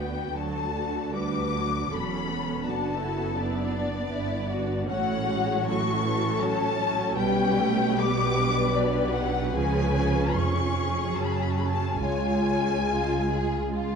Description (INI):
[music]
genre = classical, slow romantic movement for string orchestra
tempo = 68-83 BPM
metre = 3/4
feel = rubato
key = F# minor from 4.9 s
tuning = A4 = 440 Hz
[part]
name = warm symphonic violin section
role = melody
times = 0.0-14.0 s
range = D5 to D6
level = -30 LUFS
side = left 6 dB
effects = none
[part]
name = rich symphonic violin section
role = second line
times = 0.0-14.0 s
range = D4 to D5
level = -31 LUFS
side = left 4 dB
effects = none
[part]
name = rich symphonic viola section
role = accompaniment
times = 0.0-14.0 s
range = E3 to E#4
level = -29 LUFS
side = right 2 dB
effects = none
[part]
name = rich symphonic cello section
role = bass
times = 0.0-14.0 s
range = C#2 to C#3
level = -32 LUFS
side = right 3 dB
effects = none
[part]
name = rich symphonic double bass section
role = bass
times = 0.0-14.0 s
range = E1 to D2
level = -32 LUFS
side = right 3 dB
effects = none
[sound]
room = moderate concert hall reverb, RT60 1.8 s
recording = dark, warm production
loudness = -24 LUFS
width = side -6 dB against mid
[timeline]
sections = 0.0-14.0 A section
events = none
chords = 0.3 D; 2.6 D/F#; 4.9 F#m/A; 7.2 G/B; 9.5 C#; 11.2 F#5; 12.0 C#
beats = | 0.33 1.15 1.92 | 2.65 3.39 4.13 | 4.88 5.67 6.42 | 7.17 8.00 8.76 | 9.53 10.37 11.16 | 11.99 12.87 13.73